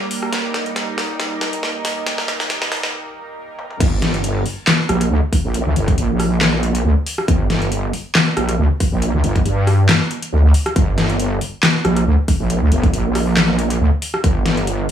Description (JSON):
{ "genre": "heavy wobble dubstep", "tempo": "138 BPM", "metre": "4/4", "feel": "swing 54% on 16ths, half-time", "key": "G minor", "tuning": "A4 = 441 Hz", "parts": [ { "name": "lush unison pad", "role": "sustained chords", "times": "0.0-3.8 s", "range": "G3 to Bb4", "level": "-26 LUFS", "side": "right 2 dB", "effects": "chorus, sidechain pumping" }, { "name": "dubstep drum kit", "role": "drums", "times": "0.1-14.9 s", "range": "crash cymbal, handclaps, hi-hat, rim click, snare drum, toms", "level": "-19 LUFS", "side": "left 1 dB", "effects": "overdrive, high-pass filter on hats, high-pass filter on snare, high-pass filter on toms, high-pass filter on cymbals, high-pass filter on room" }, { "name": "wobble bass", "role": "bass", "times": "3.8-14.9 s", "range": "G1 to G2", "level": "-16 LUFS", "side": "equal", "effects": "chorus, overdrive" }, { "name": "electronic kick drum", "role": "drums", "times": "3.8-14.3 s", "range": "none", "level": "-17 LUFS", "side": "equal", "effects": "overdrive" } ], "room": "little or no reverb", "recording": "high-pass filter, small room ambience", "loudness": "-15 LUFS", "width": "side -9 dB against mid", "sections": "0.0-3.8 A section; 3.8-14.9 B section", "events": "build-up 0.0-3.8; drum fill 0.0-2.9, 3.6; break 2.9-3.8; drop 3.8-14.9", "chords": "0.3 Eb/G; 3.8 Gm" }